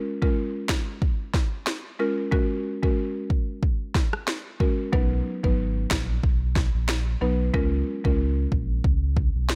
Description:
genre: dancehall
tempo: 92 BPM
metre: 4/4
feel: swing 56% on 16ths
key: unclear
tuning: A4 = 440 Hz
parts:
  - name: buzzing marimba with medium mallets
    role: accompaniment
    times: 0.0-8.2 s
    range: F#3 to B4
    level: -30 LUFS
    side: equal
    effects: none
  - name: afro-pop drum kit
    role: drums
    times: 0.2-9.6 s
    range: finger snaps, kick drum, rim click, snare drum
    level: -26 LUFS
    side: equal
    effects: none
  - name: sub bass with octave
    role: bass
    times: 4.9-9.6 s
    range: Ab1 to Db2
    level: -27 LUFS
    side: equal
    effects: none
room: digital ambience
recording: none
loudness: -25 LUFS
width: mono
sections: 0.0-9.6 A section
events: none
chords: 0.0 Db6; 2.3 Gbadd9; 4.9 B; 7.5 Db6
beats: 0.36 1.02 1.67 | 2.32 2.97 3.63 4.28 | 4.93 5.58 6.23 6.89 | 7.54 8.19 8.84 9.49

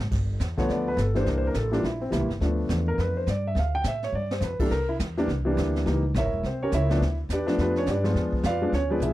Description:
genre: jazz piano trio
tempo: 209 BPM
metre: 4/4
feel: swing 61% on 8ths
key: G mixolydian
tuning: A4 = 440 Hz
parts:
  - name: upright bass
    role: bass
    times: 0.0-9.1 s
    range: E1 to A2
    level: -27 LUFS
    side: equal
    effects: none
  - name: jazz brush drum kit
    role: drums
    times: 0.0-9.1 s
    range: brushed snare drum, crash cymbal, hi-hat, kick drum, snare drum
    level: -32 LUFS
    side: right 1 dB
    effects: none
  - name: warm concert grand piano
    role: melody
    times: 0.6-9.1 s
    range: D3 to G5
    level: -26 LUFS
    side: equal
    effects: slapback echo
room: small room ambience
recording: dry, close 1970s-style studio recording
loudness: -23 LUFS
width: side -15 dB against mid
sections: 0.1-9.1 A section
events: grand piano solo 0.1-9.1; drum fill 4.1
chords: 0.1 G7; 1.3 C7; 2.4 G7; 3.6 D5; 4.1 G5; 4.7 C7; 5.9 C#dim7; 7.0 G7; 8.2 E7b9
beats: | 0.12 0.40 0.69 0.98 | 1.26 1.55 1.84 2.12 | 2.41 2.70 2.99 3.27 | 3.56 3.85 4.13 4.42 | 4.71 5.00 5.28 5.57 | 5.86 6.14 6.43 6.72 | 7.00 7.29 7.58 7.87 | 8.15 8.44 8.73 9.01

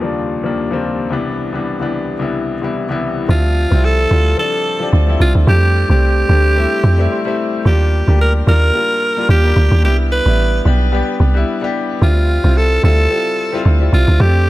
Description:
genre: amapiano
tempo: 110 BPM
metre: 4/4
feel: swing 55% on 16ths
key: D dorian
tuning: A4 = 440 Hz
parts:
  - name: clear grand piano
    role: accompaniment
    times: 0.0-14.5 s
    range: C2 to E5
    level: -20 LUFS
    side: left 4 dB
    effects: low-pass filter
  - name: raspy alto saxophone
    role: melody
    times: 3.3-14.5 s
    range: F4 to B4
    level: -17 LUFS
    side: right 1 dB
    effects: low-pass filter, tape echo
  - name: deep log drum bass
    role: bass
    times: 3.3-14.5 s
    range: A1 to F2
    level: -12 LUFS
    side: right 1 dB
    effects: none
room: studio reverb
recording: none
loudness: -12 LUFS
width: side -16 dB against mid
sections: 0.0-3.3 A section; 3.3-14.5 B section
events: drop 3.3-14.5; grand piano fill 6.8-7.7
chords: 0.0 Ebmaj7; 1.1 Cmaj7; 3.3 Dm11; 5.5 F69; 7.7 Ebmaj7; 9.8 Cmaj7; 12.0 Dm11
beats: 0.02 0.56 | 1.11 1.65 2.20 2.74 | 3.29 3.83 4.38 4.93 | 5.47 6.02 6.56 7.11 | 7.65 8.20 8.74 9.29 | 9.84 10.38 10.93 11.47 | 12.02 12.56 13.11 13.65 | 14.20

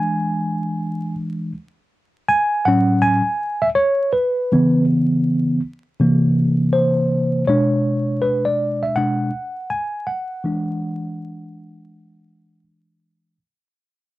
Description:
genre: hip hop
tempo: 81 BPM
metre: 4/4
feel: swing 65% on 16ths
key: unclear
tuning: A4 = 440 Hz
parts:
  - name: mellow tine electric piano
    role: solo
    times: 0.0-13.4 s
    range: A2 to G#5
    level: -17 LUFS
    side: equal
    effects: medium stereo tremolo
room: light reverb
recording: dry, close 1970s-style studio recording, vinyl crackle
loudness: -17 LUFS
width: side -17 dB against mid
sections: 0.0-7.5 A section; 7.5-13.4 B section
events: tine electric piano solo 0.0-7.5, 7.5-13.4; fade-out 7.5-13.4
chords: 0.0 E7; 1.6 A6; 4.5 C#m7; 6.0 C7; 7.5 Bm69; 10.4 E9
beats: 0.08 0.82 | 1.56 2.30 3.04 3.78 | 4.52 5.26 6.00 6.75 | 7.49 8.23 8.97 9.71 | 10.45 11.19 11.93 12.67

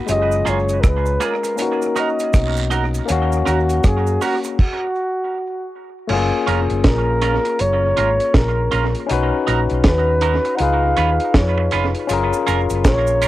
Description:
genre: lovers rock reggae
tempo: 80 BPM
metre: 4/4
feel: swing 61% on 16ths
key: F# major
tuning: A4 = 443 Hz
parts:
  - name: barky tine electric piano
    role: accompaniment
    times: 0.0-13.3 s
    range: G#3 to E#5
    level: -22 LUFS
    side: left 6 dB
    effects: cassette tape
  - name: breathy flugelhorn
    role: melody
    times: 0.1-13.3 s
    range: F#4 to F#5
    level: -21 LUFS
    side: equal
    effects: tape echo
  - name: hollow-body short-scale fingered electric bass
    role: bass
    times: 0.1-13.3 s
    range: E#1 to F#2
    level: -20 LUFS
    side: equal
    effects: tube saturation
  - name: deep reggae drum kit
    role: drums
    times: 0.1-13.3 s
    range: crash cymbal, hi-hat, kick drum, rim click, snare drum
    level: -19 LUFS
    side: right 1 dB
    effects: cassette tape, tape echo
  - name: cabasa and guiro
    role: percussion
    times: 0.1-4.6, 12.1-13.3 s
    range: none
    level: -35 LUFS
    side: right 7 dB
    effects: tape echo
  - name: semi-hollow electric guitar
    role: stabs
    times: 0.5-13.3 s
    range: A#3 to B4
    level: -25 LUFS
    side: right 7 dB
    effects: vibrato effect, cassette tape, tape echo
room: little or no reverb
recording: home recording on cassette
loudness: -15 LUFS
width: side -15 dB against mid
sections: 0.0-6.1 A section; 6.1-13.3 B section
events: stop 4.6-6.1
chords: 0.1 F#maj9; 1.6 Bmaj7; 3.1 D#m7; 4.6 N.C.; 6.1 F#maj7; 9.1 Bmaj7; 10.6 C#7; 12.1 F#maj7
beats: | 0.08 0.83 1.58 2.34 | 3.09 3.84 4.59 5.34 | 6.09 6.84 7.59 8.34 | 9.10 9.85 10.60 11.35 | 12.10 12.85

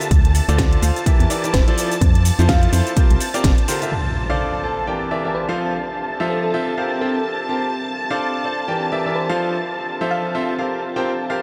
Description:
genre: piano house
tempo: 126 BPM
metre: 4/4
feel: swing 58% on 16ths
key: D minor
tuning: A4 = 440 Hz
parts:
  - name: analog string pad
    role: sustained chords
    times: 0.0-11.4 s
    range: A5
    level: -29 LUFS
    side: equal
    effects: ensemble chorus, sidechain pumping
  - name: bright concert grand piano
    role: riff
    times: 0.0-11.4 s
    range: D3 to A5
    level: -25 LUFS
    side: equal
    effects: sidechain pumping, low-pass filter, tape echo
  - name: house drum kit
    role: drums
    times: 0.0-3.9 s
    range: hi-hat, shaker, snare drum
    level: -29 LUFS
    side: equal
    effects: none
  - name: organ-like FM bass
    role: bass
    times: 0.1-3.5 s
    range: E1 to F2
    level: -19 LUFS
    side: equal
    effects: sidechain pumping
  - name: electronic kick drum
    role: drums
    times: 0.1-3.6 s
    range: none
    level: -18 LUFS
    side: equal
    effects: none
  - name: bell-like FM electric piano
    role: melody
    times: 1.5-10.5 s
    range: A4 to F5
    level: -33 LUFS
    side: equal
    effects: none
  - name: impact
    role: sound effects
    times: 3.9-5.8 s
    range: none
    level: -30 LUFS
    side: equal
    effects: none
  - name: ethereal airy pad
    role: texture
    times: 4.5-11.4 s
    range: C4 to F5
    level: -32 LUFS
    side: equal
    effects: ensemble chorus, built-in reverb, sidechain pumping
room: moderate huge ambient reverb, RT60 8.5 s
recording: dreamy mix soaked in reverb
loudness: -19 LUFS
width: mono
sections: 0.0-3.9 A section; 3.9-11.4 B section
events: impact 3.9-5.8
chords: 0.1 Dm7; 1.1 Em7b5; 1.8 Fmaj7; 3.0 C7sus4; 3.9 Dm7; 4.9 Em7b5; 5.6 Fmaj7; 6.8 C7sus4; 7.7 Dm7; 8.7 Em7b5; 9.4 Fmaj7; 10.6 C7sus4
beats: | 0.11 0.58 1.06 1.54 | 2.01 2.49 2.97 3.44 | 3.92 4.39 4.87 5.35 | 5.82 6.30 6.78 7.25 | 7.73 8.20 8.68 9.16 | 9.63 10.11 10.59 11.06

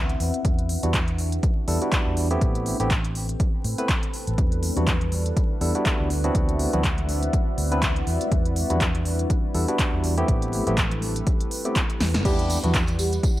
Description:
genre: deep house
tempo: 122 BPM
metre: 4/4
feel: swing 56% on 16ths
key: E minor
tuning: A4 = 440 Hz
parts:
  - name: vintage muted fingered electric bass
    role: bass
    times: 0.0-13.2 s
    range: G1 to A2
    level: -26 LUFS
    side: equal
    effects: sidechain pumping
  - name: deep dark ambient pad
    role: texture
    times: 0.0-12.3 s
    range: G3 to B5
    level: -32 LUFS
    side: left 1 dB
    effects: chorus, built-in reverb, sidechain pumping
  - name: deep house drum kit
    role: drums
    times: 0.1-13.3 s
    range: crash cymbal, handclaps, hi-hat, snare drum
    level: -29 LUFS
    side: equal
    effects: none
  - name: electronic kick drum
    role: drums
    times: 0.4-13.3 s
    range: none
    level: -24 LUFS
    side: equal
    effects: none
  - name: barky tine electric piano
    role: stabs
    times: 0.8-12.8 s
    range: G3 to B4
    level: -28 LUFS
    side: equal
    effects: sidechain pumping, digital delay
  - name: hollow soft pad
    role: sustained chords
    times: 4.4-13.4 s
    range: G3 to F#5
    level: -34 LUFS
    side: equal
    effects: chorus, sidechain pumping
  - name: congas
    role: percussion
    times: 4.6-12.7 s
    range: none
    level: -33 LUFS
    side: equal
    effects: none
  - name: marimba with soft mallets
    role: melody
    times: 12.3-13.3 s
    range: G4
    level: -30 LUFS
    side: right 2 dB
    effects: none
  - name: tambourine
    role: percussion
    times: 12.3-13.4 s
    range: none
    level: -35 LUFS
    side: right 3 dB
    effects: none
room: little or no reverb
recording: vinyl crackle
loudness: -21 LUFS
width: side -15 dB against mid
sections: 0.0-12.3 A section; 12.3-13.4 B section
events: drum fill 12.0; band accent 12.1; drop 12.3-13.4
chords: 0.2 Em9; 2.4 Am9; 4.4 Em9; 6.1 D13; 8.1 Em9; 10.3 Am9; 12.3 Em9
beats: | 0.45 0.94 1.43 1.92 | 2.42 2.91 3.40 3.89 | 4.38 4.87 5.37 5.86 | 6.35 6.84 7.33 7.83 | 8.32 8.81 9.30 9.79 | 10.28 10.78 11.27 11.76 | 12.25 12.74 13.23

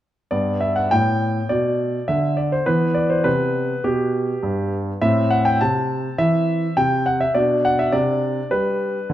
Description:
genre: classical-period piano sonatina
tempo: 103 BPM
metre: 4/4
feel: rubato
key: G major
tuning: A4 = 441 Hz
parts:
  - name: clear concert grand piano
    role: solo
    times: 0.3-9.1 s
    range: G2 to A5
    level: -18 LUFS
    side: equal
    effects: none
room: moderate recital hall reverb, RT60 1.3 s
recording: dark, warm production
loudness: -18 LUFS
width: side -12 dB against mid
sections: 0.3-9.1 A section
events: none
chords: 0.3 G; 2.7 Em; 5.0 Am; 7.3 G/B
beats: | 0.32 0.91 1.50 2.08 | 2.67 3.26 3.85 4.43 | 5.02 5.60 6.18 6.76 | 7.35 7.93 8.51 9.09

